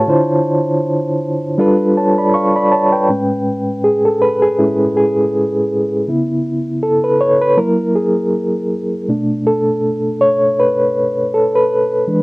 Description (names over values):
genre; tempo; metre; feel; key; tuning
R&B; 80 BPM; 4/4; swing 56% on 16ths; A major; A4 = 440 Hz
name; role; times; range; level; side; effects
mellow reed electric piano; solo; 0.0-12.2 s; A2 to C#6; -12 LUFS; equal; fast tremolo, cassette tape
room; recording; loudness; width
light reverb; home recording on cassette; -13 LUFS; side -23 dB against mid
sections
0.0-3.1 A section; 3.1-12.2 B section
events
reed electric piano solo 3.1-12.2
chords
0.1 Dm7; 1.6 G9; 3.1 Amaj7; 6.1 C#m7; 7.6 F#7; 9.1 Bm7